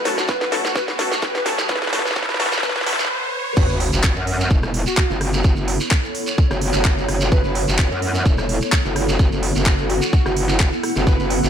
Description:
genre	bass house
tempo	128 BPM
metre	4/4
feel	swing 54% on 16ths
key	F# minor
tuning	A4 = 441 Hz
part	sweeping resonant pad	sustained chords	0.0-3.1 s	F#3 to F#4	-34 LUFS	right 1 dB	none
part	riser and sub drop	sound effects	0.0-5.4 s	none	-28 LUFS	right 1 dB	none
part	granular cloud pad	texture	0.0-11.5 s	F#3 to F#5	-27 LUFS	right 1 dB	built-in reverb, sidechain pumping
part	orchestra-hit-like synth stab	stabs	0.1-3.0 s	A3 to A4	-26 LUFS	left 2 dB	built-in reverb, sidechain pumping, ping-pong delay
part	garage drum kit	drums	0.1-11.4 s	crash cymbal, handclaps, hi-hat, rim click, snare drum	-24 LUFS	equal	none
part	shekere	percussion	0.2-11.5 s	none	-28 LUFS	right 3 dB	none
part	airy dreamy lead	melody	0.3-11.3 s	F#4 to B4	-27 LUFS	equal	chorus, ping-pong delay
part	electronic kick drum	drums	0.3-11.2 s	none	-18 LUFS	equal	none
part	metallic wobble bass	bass	3.6-11.5 s	E1 to F#2	-21 LUFS	equal	distortion, chorus, overdrive, sidechain pumping
room	light reverb, digital ambience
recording	high-pass filter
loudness	-17 LUFS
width	side -8 dB against mid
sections	0.0-3.6 A section; 3.6-11.5 B section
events	build-up 0.0-3.6; drum fill 0.0-3.1; riser 0.0-3.6; filter sweep on synth stab 0.0-3.6; break 3.1-3.6; drop 3.6-11.5; impact 3.6-5.4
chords	0.0 F#m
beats	0.29 0.76 1.22 | 1.69 2.16 2.63 3.10 | 3.57 4.04 4.51 4.97 | 5.44 5.91 6.38 6.85 | 7.32 7.79 8.26 8.72 | 9.19 9.66 10.13 10.60 | 11.07

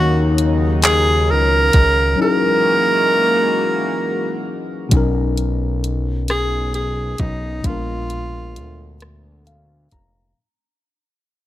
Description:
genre	slow six-eight R&B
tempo	44 BPM (dotted quarters)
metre	6/8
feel	straight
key	B major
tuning	A4 = 440 Hz
part	breathy tenor saxophone	melody	0.0-9.0 s	D#4 to A#4	-18 LUFS	right 1 dB	none
part	tine electric piano	accompaniment	0.0-10.4 s	A#2 to A#5	-23 LUFS	left 4 dB	none
part	chorused pulse-width pad	sustained chords	0.0-4.9 s	C#3 to F#4	-24 LUFS	equal	none
part	fat analog bass	bass	0.0-10.3 s	E#1 to D#2	-20 LUFS	equal	none
part	smooth R&B drum kit	drums	0.4-10.1 s	handclaps, hi-hat, kick drum, rim click	-17 LUFS	equal	none
room	light reverb, digital ambience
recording	none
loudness	-15 LUFS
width	side -13 dB against mid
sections	0.0-4.9 A section; 4.9-10.4 B section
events	break 2.2-4.9; fade-out 4.9-10.4; tine electric piano fill 9.0-10.4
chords	0.0 D#m7; 2.2 F#13; 4.9 Bmaj9; 7.6 A#7b9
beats	0.82 | 2.19 3.55 | 4.92 6.28 | 7.64 9.01

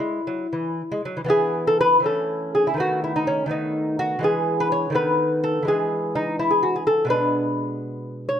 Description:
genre	classical, baroque-style dance for lute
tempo	83 BPM (dotted quarters)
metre	6/8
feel	rubato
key	E major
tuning	A4 = 440 Hz
part	lute	solo	0.0-8.4 s	B2 to C#5	-20 LUFS	equal	none
room	light reverb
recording	close, detailed microphones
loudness	-20 LUFS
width	side -9 dB against mid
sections	0.0-1.3 A section; 1.3-8.4 A section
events	none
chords	0.0 N.C.; 1.3 E; 2.1 A/E; 2.8 B7/D#; 4.2 E; 4.9 B7/D#; 5.7 E; 7.1 Bm6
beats	0.53 | 1.30 2.05 | 2.79 3.50 | 4.23 4.95 | 5.67 6.39 | 7.10 7.81

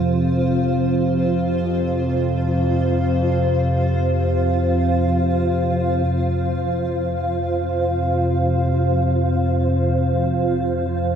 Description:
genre	dark ambient drone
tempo	free time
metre	none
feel	none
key	unclear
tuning	A4 = 440 Hz
part	granular cloud pad	sustained chords	0.0-11.2 s	F4 to F5	-22 LUFS	right 1 dB	built-in reverb
part	analog drone	drone	0.0-11.2 s	F2 to C3	-19 LUFS	equal	chorus
part	wind-like tuned noise texture	texture	7.1-11.2 s	C5	-45 LUFS	right 2 dB	none
room	wet huge ambient reverb, RT60 8.1 s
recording	none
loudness	-17 LUFS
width	side -8 dB against mid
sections	0.0-6.1 A section; 6.1-11.2 B section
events	none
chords	0.0 F5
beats	free time

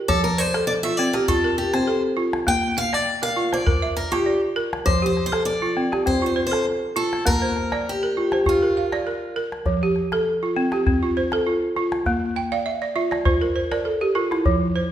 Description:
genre	west african traditional, West African string and xylophone music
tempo	100 BPM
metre	4/4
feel	swing 53% on 16ths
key	F major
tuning	A4 = 439 Hz
part	balafon	arpeggios	0.0-14.9 s	F3 to G5	-22 LUFS	right 1 dB	none
part	picked steel-string acoustic guitar	melody	0.1-9.3 s	F4 to G5	-23 LUFS	left 1 dB	none
part	calabash	percussion	0.1-14.6 s	none	-26 LUFS	left 1 dB	none
room	wet recital hall reverb, RT60 1.4 s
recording	recorded in a church or concert hall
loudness	-19 LUFS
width	side -11 dB against mid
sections	0.0-4.9 A section; 4.9-14.5 B section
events	steel-string acoustic guitar solo 0.0-4.9; balafon fill 12.4-14.5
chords	0.1 F; 2.5 Bb; 4.9 F; 7.3 Bb; 9.7 F; 12.1 Bb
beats	| 0.09 0.68 1.28 1.87 | 2.47 3.07 3.66 4.26 | 4.86 5.46 6.06 6.66 | 7.26 7.86 8.46 9.06 | 9.66 10.26 10.86 11.46 | 12.06 12.66 13.26 13.86 | 14.46

